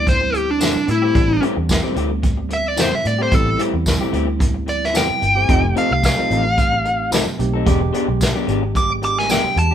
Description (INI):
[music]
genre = straight-eighth soul blues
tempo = 110 BPM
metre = 4/4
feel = swing 55% on 16ths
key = A minor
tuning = A4 = 438 Hz
[part]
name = dark smooth lead guitar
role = melody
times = 0.0-9.7 s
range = D4 to D6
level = -18 LUFS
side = equal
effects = overdrive
[part]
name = barky tine electric piano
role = accompaniment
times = 0.0-9.7 s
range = G3 to G4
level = -26 LUFS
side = right 5 dB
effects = medium stereo tremolo
[part]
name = vintage muted fingered electric bass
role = bass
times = 0.0-9.7 s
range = E1 to A2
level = -22 LUFS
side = equal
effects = none
[part]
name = electric guitar through a small old amp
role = stabs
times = 0.1-9.7 s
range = E3 to A4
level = -24 LUFS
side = left 4 dB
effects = none
[part]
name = vintage brush drum kit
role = drums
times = 0.1-9.7 s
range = hi-hat, kick drum, snare drum, tambourine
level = -20 LUFS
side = equal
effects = none
[sound]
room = light reverb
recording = band playing live in one room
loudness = -15 LUFS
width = side -9 dB against mid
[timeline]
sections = 0.0-9.7 A section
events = none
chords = 0.0 Am7; 5.5 F7; 7.7 E7#9